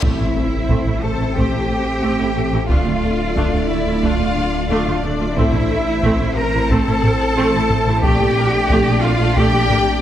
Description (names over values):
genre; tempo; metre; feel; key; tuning
cinematic, hybrid orchestral and electronic film score; 90 BPM; 4/4; straight; A phrygian; A4 = 442 Hz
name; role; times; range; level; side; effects
rich symphonic violin section; melody; 0.0-10.0 s; C5 to D5; -30 LUFS; left 4 dB; none
warm symphonic violin section; second line; 0.0-10.0 s; D5 to Bb5; -25 LUFS; left 3 dB; none
warm studio viola section; accompaniment; 0.0-9.8 s; A3 to Bb4; -23 LUFS; right 1 dB; none
dark French horn section; sustained chords; 0.0-10.0 s; A3 to D4; -25 LUFS; left 5 dB; none
ethereal airy pad; sustained chords; 0.0-10.0 s; A3 to E5; -27 LUFS; right 1 dB; ensemble chorus, built-in reverb, phaser
clear symphonic double bass section; bass; 0.0-9.8 s; A1 to D2; -23 LUFS; right 3 dB; none
detuned saw bass; bass; 0.0-10.0 s; D1 to Bb1; -24 LUFS; equal; none
rich symphonic cello section; bass; 0.0-10.0 s; D4 to Bb4; -22 LUFS; right 1 dB; none
taiko ensemble; drums; 0.0-10.0 s; none; -22 LUFS; equal; none
reverse cymbal and impact; sound effects; 0.0-2.7 s; none; -29 LUFS; equal; none
room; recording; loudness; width
moderate concert hall reverb, RT60 1.9 s; none; -15 LUFS; side -11 dB against mid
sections
0.0-10.0 A section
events
impact 0.0-2.7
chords
0.0 Am; 2.7 Dm; 5.4 Am; 8.0 Gmadd9/Bb